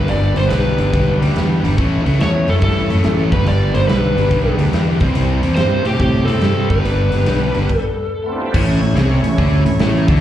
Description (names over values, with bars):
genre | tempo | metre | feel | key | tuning
blues rock power trio and southern rock | 142 BPM | 4/4 | swing 66% on 8ths | unclear | A4 = 440 Hz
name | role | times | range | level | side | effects
overdriven slide guitar | melody | 0.0-8.4 s | G4 to D5 | -21 LUFS | left 1 dB | slapback echo, analog delay
overdriven tonewheel organ | sustained chords | 0.0-10.2 s | E3 to D5 | -26 LUFS | right 2 dB | slow rotary speaker, chorus vibrato
overdriven electric guitar | riff | 0.0-10.2 s | G2 to C4 | -20 LUFS | equal | slapback echo
fuzz fingered electric bass | bass | 0.0-10.2 s | G1 to A2 | -16 LUFS | equal | overdrive
big rock drum kit | drums | 0.1-10.2 s | crash cymbal, hi-hat, kick drum, snare drum | -21 LUFS | equal | none
room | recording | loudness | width
light reverb, studio reverb | live gig heard through the venue's PA, cassette tape, club reverb | -13 LUFS | side -12 dB against mid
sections
0.0-8.5 A section; 8.5-10.2 B section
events
stop 7.7-8.5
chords
0.0 G; 1.8 A; 3.3 G; 4.9 C; 6.6 G; 8.5 A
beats
| 0.08 0.50 0.93 1.35 | 1.77 2.19 2.62 3.04 | 3.46 3.89 4.31 4.73 | 5.16 5.58 6.00 6.43 | 6.85 7.28 7.70 8.12 | 8.54 8.97 9.39 9.81